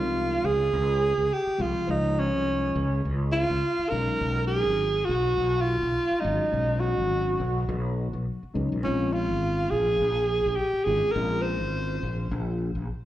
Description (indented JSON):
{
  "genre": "electric jazz fusion",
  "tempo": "104 BPM",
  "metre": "4/4",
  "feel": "swing 54% on 16ths",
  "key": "Bb minor",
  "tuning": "A4 = 435 Hz",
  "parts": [
    { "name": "breathy alto saxophone", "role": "melody", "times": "0.0-12.3 s", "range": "Db4 to C5", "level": "-25 LUFS", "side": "right 1 dB", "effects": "slapback echo" },
    { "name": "mellow tine electric piano", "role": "accompaniment", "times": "0.0-12.0 s", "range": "F3 to C5", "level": "-33 LUFS", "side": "left 2 dB", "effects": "phaser" },
    { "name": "fretless electric bass", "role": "bass", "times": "0.0-12.9 s", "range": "G#1 to Db2", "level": "-28 LUFS", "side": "equal", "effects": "analog chorus" }
  ],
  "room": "light reverb",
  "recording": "live gig heard through the venue's PA, club reverb",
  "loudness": "-23 LUFS",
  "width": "side -13 dB against mid",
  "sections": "0.0-13.1 A section",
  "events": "none",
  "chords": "0.0 Dbmaj7; 3.9 B69; 8.8 Bbm9"
}